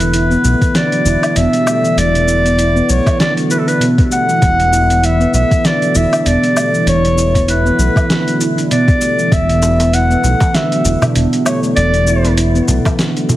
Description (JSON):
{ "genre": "organic downtempo", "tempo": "98 BPM", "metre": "4/4", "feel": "swing 57% on 16ths", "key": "unclear", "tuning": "A4 = 440 Hz", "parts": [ { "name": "warm clarinet", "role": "melody", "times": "0.0-12.3 s", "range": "A4 to F#5", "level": "-16 LUFS", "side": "equal", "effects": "digital delay" }, { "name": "handpan", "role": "arpeggios", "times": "0.0-13.4 s", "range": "B2 to E4", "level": "-15 LUFS", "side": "equal", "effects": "none" }, { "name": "round analog bass", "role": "bass", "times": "0.0-12.8 s", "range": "E1 to B1", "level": "-15 LUFS", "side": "equal", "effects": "sidechain pumping" }, { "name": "dusty soul sampler-style drum kit", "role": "drums", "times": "0.0-13.4 s", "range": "cabasa, hi-hat, snare drum, woodblock", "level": "-20 LUFS", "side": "equal", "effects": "overdrive, small room ambience" }, { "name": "electronic kick drum", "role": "drums", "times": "0.6-13.0 s", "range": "none", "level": "-13 LUFS", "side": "equal", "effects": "small room ambience" }, { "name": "darbuka", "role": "percussion", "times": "9.6-13.4 s", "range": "none", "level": "-20 LUFS", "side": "right 1 dB", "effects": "none" } ], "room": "light reverb, studio reverb", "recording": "heavily compressed radio sound, multiband compression", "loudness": "-11 LUFS", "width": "side -15 dB against mid", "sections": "0.0-13.4 A section", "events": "none", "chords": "0.0 E7(no3)", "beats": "0.14 0.75 1.36 | 1.97 2.58 3.20 3.81 | 4.42 5.03 5.64 6.26 | 6.87 7.48 8.09 8.71 | 9.32 9.93 10.54 11.15 | 11.77 12.38 12.99" }